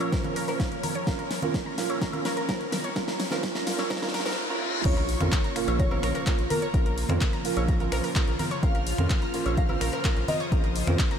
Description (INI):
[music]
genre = progressive house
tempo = 127 BPM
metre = 4/4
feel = straight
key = Bb minor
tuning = A4 = 439 Hz
[part]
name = evolving wavetable pad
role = sustained chords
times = 0.0-11.2 s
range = Db3 to Db5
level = -35 LUFS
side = left 1 dB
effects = ensemble chorus, built-in reverb, sidechain pumping
[part]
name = analog pluck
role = arpeggios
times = 0.0-11.2 s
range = Bb4 to Bb5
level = -35 LUFS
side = left 1 dB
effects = chorus, sidechain pumping, diffuse ambient delay
[part]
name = felt-muted upright piano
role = stabs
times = 0.0-11.2 s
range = Bb2 to Bb4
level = -32 LUFS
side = right 5 dB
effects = wide subtle chorus, sidechain pumping, low-pass filter, diffuse ambient delay
[part]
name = big-room dance drum kit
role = drums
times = 0.0-11.2 s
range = crash cymbal, finger snaps, handclaps, hi-hat, snare drum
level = -32 LUFS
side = left 1 dB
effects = none
[part]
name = woodblock, cowbell and congas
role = percussion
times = 0.0-11.0 s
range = none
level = -36 LUFS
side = right 1 dB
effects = sidechain pumping on perc
[part]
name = riser, reverse cymbal and sub drop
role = sound effects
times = 1.7-6.7 s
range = none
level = -37 LUFS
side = left 2 dB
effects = none
[part]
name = electronic kick drum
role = drums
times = 0.1-11.1 s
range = none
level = -26 LUFS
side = equal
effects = none
[part]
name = dark grand piano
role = melody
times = 4.8-10.9 s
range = Bb4 to F5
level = -35 LUFS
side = left 1 dB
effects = analog chorus, sidechain pumping, ping-pong delay
[part]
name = rich studio violin section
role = second line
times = 4.8-10.9 s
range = Bb5 to F6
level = -40 LUFS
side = right 2 dB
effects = sidechain pumping, diffuse ambient delay
[part]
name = round analog bass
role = bass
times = 4.8-11.0 s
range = Bb1 to F2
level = -28 LUFS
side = equal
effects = tube saturation, sidechain pumping
[sound]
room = moderate huge ambient reverb, RT60 4.9 s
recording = dreamy mix soaked in reverb, high-pass filter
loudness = -24 LUFS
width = side -8 dB against mid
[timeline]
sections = 0.0-4.8 A section; 4.8-11.2 B section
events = build-up 0.0-4.8; drum fill 0.0-4.4; filter sweep on synth pluck 0.0-4.8; filter sweep on felt piano 0.0-4.8; filter sweep 0.0-4.8; reverse cymbal 3.9-4.8; drop 4.8-11.2; impact 4.8-6.7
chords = 0.0 Bbm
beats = 0.13 0.60 | 1.07 1.54 2.02 2.49 | 2.96 3.43 3.90 4.38 | 4.85 5.32 5.79 6.27 | 6.74 7.21 7.68 8.16 | 8.63 9.10 9.57 10.05 | 10.52 10.99